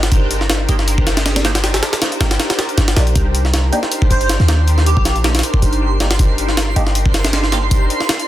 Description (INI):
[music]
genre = drum and bass, jungle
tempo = 158 BPM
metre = 4/4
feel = swing 54% on 16ths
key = C minor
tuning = A4 = 439 Hz
[part]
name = soft string machine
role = sustained chords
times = 0.0-8.3 s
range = D4 to C5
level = -23 LUFS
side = equal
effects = phaser, ensemble chorus
[part]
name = warm 808-style bass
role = bass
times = 0.0-7.9 s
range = G1 to Eb2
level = -16 LUFS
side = equal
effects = none
[part]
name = jungle sampler-style drum kit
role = drums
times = 0.0-8.3 s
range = hi-hat, kick drum, snare drum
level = -16 LUFS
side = equal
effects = none
[part]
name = filtered dub chord stab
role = stabs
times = 0.7-7.6 s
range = Bb3 to G4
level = -26 LUFS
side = right 1 dB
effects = phaser, lush chorus, cassette tape, dub echo
[part]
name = twinkling granular texture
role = texture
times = 3.8-8.3 s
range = C6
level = -27 LUFS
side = right 5 dB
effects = built-in reverb
[part]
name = airy dreamy lead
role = melody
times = 4.1-5.2 s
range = G4 to C5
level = -24 LUFS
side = right 1 dB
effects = chorus, dub echo
[sound]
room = light reverb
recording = dense, heavily limited modern master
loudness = -13 LUFS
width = side -14 dB against mid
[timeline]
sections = 0.0-8.3 A section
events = none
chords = 0.0 Cm9